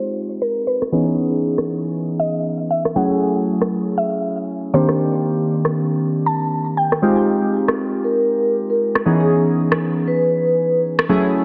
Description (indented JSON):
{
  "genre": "deep house",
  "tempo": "118 BPM",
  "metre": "4/4",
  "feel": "swing 59% on 16ths",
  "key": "unclear",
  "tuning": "A4 = 442 Hz",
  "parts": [
    { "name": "mallet-like synth pluck", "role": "melody", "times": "0.0-7.0 s", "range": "Bb4 to A5", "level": "-25 LUFS", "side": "equal", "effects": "chorus, digital delay" },
    { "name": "warm analog keys", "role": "stabs", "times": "0.0-11.4 s", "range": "Eb3 to Ab4", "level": "-21 LUFS", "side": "equal", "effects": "chorus, low-pass filter" },
    { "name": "electronic rim click", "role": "drums", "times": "0.8-11.1 s", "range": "none", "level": "-23 LUFS", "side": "equal", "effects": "soft clipping on snare" },
    { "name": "vibraphone with soft mallets", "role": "melody", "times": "8.0-10.8 s", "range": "Ab4 to Cb5", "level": "-21 LUFS", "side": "equal", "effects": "digital delay" }
  ],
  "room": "moderate echo chamber reverb, RT60 1.7 s, digital ambience",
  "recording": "dense, heavily limited modern master, vinyl crackle, low-pass filter",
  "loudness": "-19 LUFS",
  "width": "mono",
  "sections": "0.0-11.4 A section",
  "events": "filter sweep on synth keys 0.0-11.4; filter sweep 0.0-11.4",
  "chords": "0.0 Fm9; 0.9 Dbm9; 3.0 Gbm9; 4.7 Cm9; 7.0 Fm9; 9.1 Dbm9"
}